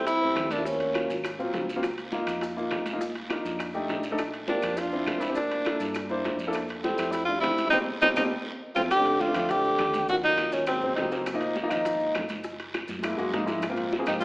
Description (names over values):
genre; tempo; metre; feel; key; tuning
Afro-Cuban jazz; 204 BPM; 4/4; straight; F major; A4 = 440 Hz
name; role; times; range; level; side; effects
warm tenor saxophone; melody; 0.0-1.2, 4.5-11.2, 14.1-14.2 s; C4 to G4; -25 LUFS; equal; none
breathy trombone; second line; 0.0-1.2, 4.5-11.2, 14.1 s; Ab2 to D4; -33 LUFS; right 1 dB; none
warm upright piano; accompaniment; 0.0-14.2 s; F3 to C5; -30 LUFS; left 1 dB; none
hollow-body short-scale fingered electric bass; bass; 0.0-14.2 s; Gb1 to Ab2; -43 LUFS; equal; none
bongos; percussion; 0.1-14.2 s; none; -38 LUFS; left 1 dB; none
congas; percussion; 0.1-14.2 s; none; -42 LUFS; equal; none
guiro; percussion; 0.1-14.2 s; none; -41 LUFS; right 1 dB; none
maracas; percussion; 0.1-14.2 s; none; -50 LUFS; left 1 dB; none
timbales; percussion; 0.1-14.2 s; none; -38 LUFS; right 1 dB; none
claves; percussion; 0.4-14.2 s; none; -39 LUFS; left 1 dB; none
room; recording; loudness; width
wet recital hall reverb, RT60 1.5 s; recorded in a church or concert hall, AM radio sound; -25 LUFS; side -25 dB against mid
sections
0.0-8.9 A section; 8.9-14.2 B section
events
band accent 7.7-8.9; drum fill 8.3-8.9, 12.9-13.6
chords
0.0 Fmaj9 (rootless); 0.7 Ebm7; 1.2 Ab13; 1.8 Db69; 3.0 Cm11; 3.6 F13; 4.2 Bb69; 5.4 C13; 6.5 Fmaj9; 7.7 Cm7; 8.3 F; 8.9 F13; 10.1 Ebm7; 10.7 Ab7; 11.3 Db6; 12.5 Gb9; 13.6 Ab6